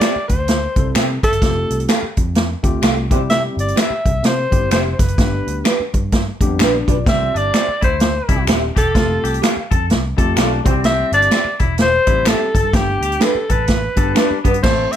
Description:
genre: uptempo 1960s-style soul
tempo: 127 BPM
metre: 4/4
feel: swing 60% on 8ths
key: C major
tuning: A4 = 440 Hz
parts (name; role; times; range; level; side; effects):
- warm alto saxophone; melody; 0.0-15.0 s; G4 to E5; -19 LUFS; equal; none
- tine electric piano; accompaniment; 0.0-15.0 s; G3 to D5; -24 LUFS; left 3 dB; overdrive
- electric guitar through a small old amp; stabs; 0.0-14.5 s; D4 to F5; -21 LUFS; right 3 dB; lush chorus
- swinging big-band drum kit; drums; 0.0-15.0 s; crash cymbal, hi-hat, kick drum, snare drum; -17 LUFS; equal; none
- finger snaps; percussion; 0.0-14.3 s; none; -25 LUFS; left 4 dB; none
- vintage muted picked electric bass; bass; 0.2-14.9 s; Eb1 to C3; -22 LUFS; equal; none
- twangy electric guitar; riff; 7.1-15.0 s; A3 to A4; -25 LUFS; left 6 dB; none
room: light reverb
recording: none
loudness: -14 LUFS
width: side -10 dB against mid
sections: 0.0-14.6 A section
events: none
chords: 0.0 C; 1.4 Fadd9; 3.1 C; 5.2 G; 7.1 C; 9.0 Fadd9; 10.6 C; 12.7 G

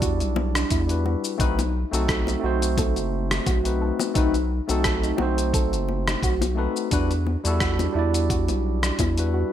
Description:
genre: sunset chillout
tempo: 87 BPM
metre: 4/4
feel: swing 55% on 16ths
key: E minor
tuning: A4 = 440 Hz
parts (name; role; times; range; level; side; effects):
- barky tine electric piano; accompaniment; 0.0-9.5 s; G3 to D5; -27 LUFS; moving between left 8 dB and right 5 dB; auto-pan, ping-pong delay
- soft round pluck; arpeggios; 0.0-9.5 s; D4 to A4; -29 LUFS; right 2 dB; chorus, vintage 12-bit sampler grit, ping-pong delay
- round analog bass; bass; 0.0-9.4 s; F#1 to E2; -25 LUFS; equal; none
- dusty soul sampler-style drum kit; drums; 0.0-9.3 s; hi-hat, rim click, shaker; -28 LUFS; left 1 dB; gated reverb
- electronic kick drum; drums; 0.0-9.1 s; none; -26 LUFS; equal; none
- bongos; percussion; 0.4-9.1 s; none; -31 LUFS; left 7 dB; none
room: moderate plate reverb, RT60 1.2 s, digital ambience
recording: bright 1980s-style digital production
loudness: -21 LUFS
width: side -10 dB against mid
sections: 0.0-9.5 A section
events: none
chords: 0.0 Em9; 1.4 B7b9; 6.9 Em9

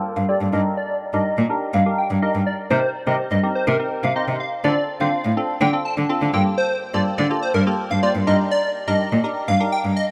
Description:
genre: pop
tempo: 124 BPM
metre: 4/4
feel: straight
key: unclear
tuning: A4 = 438 Hz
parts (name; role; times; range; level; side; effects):
- wavetable chord stab; accompaniment; 0.0-9.8 s; Bb3 to C5; -27 LUFS; equal; low-pass filter
- plucky unison lead; melody; 0.2-10.1 s; Bb4 to A5; -25 LUFS; equal; low-pass filter, digital delay
- clear cello; bass; 0.2-9.9 s; G2 to D3; -23 LUFS; equal; none
room: moderate lush hall reverb, RT60 2.7 s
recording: rough home demo mix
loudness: -21 LUFS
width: mono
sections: 0.0-10.1 A section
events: filter sweep 0.0-10.1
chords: 0.0 Gm9; 0.5 Ebmaj7/G; 2.7 Cm7; 4.6 Dm7; 6.3 Gm9; 8.3 Ebmaj7

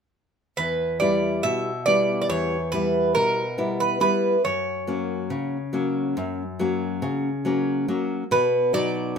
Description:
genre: greek folk, Greek bouzouki band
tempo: 140 BPM (eighths)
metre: 9/8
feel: straight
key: E dorian sharp4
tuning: A4 = 440 Hz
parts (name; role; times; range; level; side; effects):
- Greek bouzouki; melody; 0.6-9.2 s; A#4 to E5; -22 LUFS; right 2 dB; none
- nylon-string guitar; accompaniment; 0.6-9.2 s; E2 to E4; -24 LUFS; left 2 dB; none
room: moderate studio reverb, RT60 0.6 s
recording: minimal, uncompressed stereo recording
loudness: -21 LUFS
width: side -6 dB against mid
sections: 0.6-9.2 A section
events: none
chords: 0.6 Em; 4.4 F#; 8.3 B

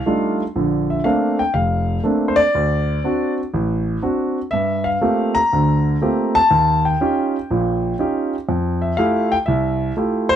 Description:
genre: solo jazz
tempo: 121 BPM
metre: 4/4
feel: swing 68% on 8ths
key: F major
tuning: A4 = 440 Hz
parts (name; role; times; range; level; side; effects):
- warm grand piano; solo; 0.0-10.4 s; F1 to Bb5; -16 LUFS; equal; none
room: little or no reverb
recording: close, detailed microphones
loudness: -16 LUFS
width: side -9 dB against mid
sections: 0.0-10.4 A section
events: none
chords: 0.0 F13; 0.6 Bbmaj9; 2.5 D7; 4.5 Gm11; 6.5 Eb9; 8.5 Fmaj9

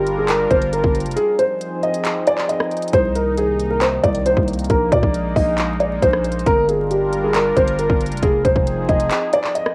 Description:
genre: hip hop, trap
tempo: 136 BPM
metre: 4/4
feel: half-time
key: unclear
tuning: A4 = 440 Hz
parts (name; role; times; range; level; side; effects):
- dark concert grand piano; melody; 0.0-9.7 s; G4 to Eb5; -20 LUFS; equal; low-pass filter, cassette tape
- sweeping resonant pad; sustained chords; 0.0-9.7 s; C3 to Bb4; -28 LUFS; equal; chorus, cassette tape
- growling 808-style bass; bass; 0.0-9.1 s; F1 to Bb2; -25 LUFS; equal; none
- trap drum kit; drums; 0.1-9.7 s; handclaps, hi-hat, kick drum, rim click; -24 LUFS; equal; cassette tape
room: light reverb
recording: home recording on cassette, vinyl crackle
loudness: -18 LUFS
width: mono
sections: 0.0-9.7 A section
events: kick muted 1.2-2.9; break 9.1-9.7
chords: 0.0 Gm7; 1.2 Fm7; 2.9 Cm7; 4.7 Bb7sus4; 6.5 Gm7; 8.2 Fm7

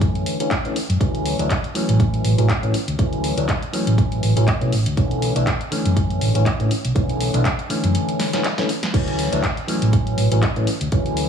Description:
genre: filtered disco house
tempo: 121 BPM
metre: 4/4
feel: swing 55% on 16ths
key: unclear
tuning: A4 = 439 Hz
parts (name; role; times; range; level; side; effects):
- overdriven tine electric piano; accompaniment; 0.0-11.3 s; D3 to D4; -23 LUFS; left 1 dB; phaser, vintage 12-bit sampler grit, sidechain pumping, low-pass filter
- hollow-body short-scale fingered electric bass; bass; 0.0-11.3 s; A1 to B2; -20 LUFS; right 1 dB; sidechain pumping, low-pass filter
- electronic kick drum; drums; 0.0-11.0 s; none; -21 LUFS; equal; none
- house drum kit; drums; 0.0-11.3 s; crash cymbal, handclaps, hi-hat, snare drum; -26 LUFS; equal; sidechain pumping on hats, sidechain pumping on cymbals
room: light reverb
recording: studio ambience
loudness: -17 LUFS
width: side -7 dB against mid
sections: 0.0-11.3 A section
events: filter sweep 0.0-11.3; drum fill 8.2-8.9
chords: 0.0 Bm11 (rootless)

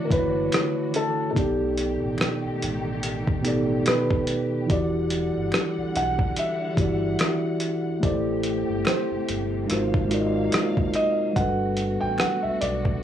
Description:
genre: lo-fi hip hop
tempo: 72 BPM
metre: 4/4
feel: swing 56% on 16ths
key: unclear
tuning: A4 = 440 Hz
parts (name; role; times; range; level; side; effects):
- felt-muted upright piano; melody; 0.0-13.0 s; G4 to G5; -28 LUFS; right 1 dB; low-pass filter, tape echo
- mellow tine electric piano; accompaniment; 0.0-13.0 s; B2 to D#5; -25 LUFS; equal; medium stereo tremolo, cassette tape, low-pass filter
- warm symphonic string section; sustained chords; 0.0-13.0 s; B2 to F#5; -35 LUFS; left 2 dB; low-pass filter
- sub bass with octave; bass; 0.1-13.0 s; E1 to B1; -32 LUFS; equal; none
- dusty soul sampler-style drum kit; drums; 0.1-13.0 s; hi-hat, kick drum, rim click; -25 LUFS; equal; overdrive
- finger snaps; percussion; 0.5-12.4 s; none; -38 LUFS; equal; none
room: light reverb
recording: dry, gritty hardware recording, cassette tape, studio reverb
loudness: -22 LUFS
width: side -10 dB against mid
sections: 0.0-13.0 A section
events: none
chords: 0.0 Dmaj9; 1.4 B7alt; 4.7 Em9; 8.0 Am7; 9.7 G#13; 11.4 Gmaj9

